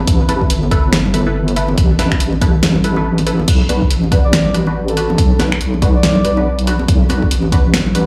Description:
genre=deep dubstep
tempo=141 BPM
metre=4/4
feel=swing 60% on 16ths, half-time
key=B minor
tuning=A4 = 440 Hz
part: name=deep soft wobble bass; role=bass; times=0.0-8.1 s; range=G1 to B1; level=-19 LUFS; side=equal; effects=chorus
part: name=deep house drum kit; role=drums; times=0.1-8.1 s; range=crash cymbal, finger snaps, hi-hat, snare drum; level=-21 LUFS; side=equal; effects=none
part: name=electronic kick drum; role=drums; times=0.1-7.6 s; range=none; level=-16 LUFS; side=equal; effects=none
part: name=filtered dub chord stab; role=stabs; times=0.3-8.1 s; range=D4 to B4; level=-25 LUFS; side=equal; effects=phaser, subtle chorus, dub echo
part: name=congas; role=percussion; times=0.3-7.9 s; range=none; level=-24 LUFS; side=equal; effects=dub echo
part: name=breathy flute-like synth lead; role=melody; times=4.2-6.5 s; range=A4 to D5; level=-24 LUFS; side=equal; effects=chorus, dub echo
room=light reverb, digital ambience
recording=played on a big sound system in a bare room, large studio reverb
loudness=-14 LUFS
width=mono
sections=0.0-8.1 A section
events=none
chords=0.0 Asus2; 3.5 Bm

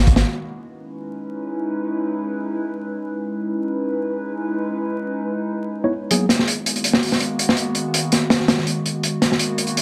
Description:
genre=drum and bass, jungle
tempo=164 BPM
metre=4/4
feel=swing 54% on 16ths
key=C# minor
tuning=A4 = 440 Hz
part: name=crunchy breakbeat drum kit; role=drums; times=0.1-0.3, 6.1-9.8 s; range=hi-hat, kick drum, snare drum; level=-20 LUFS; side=equal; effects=none
part: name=warbly tape-like pad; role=sustained chords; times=0.3-9.8 s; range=D#3 to B4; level=-26 LUFS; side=equal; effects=chorus, built-in reverb
part: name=mellow tine electric piano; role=stabs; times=5.8-6.2 s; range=F#3 to C#5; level=-24 LUFS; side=equal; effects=vintage 12-bit sampler grit, low-pass filter, dub echo
room=light reverb, studio ambience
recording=vinyl crackle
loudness=-22 LUFS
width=mono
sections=0.3-9.8 A section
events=none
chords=0.3 C#m9; 6.1 G#m9

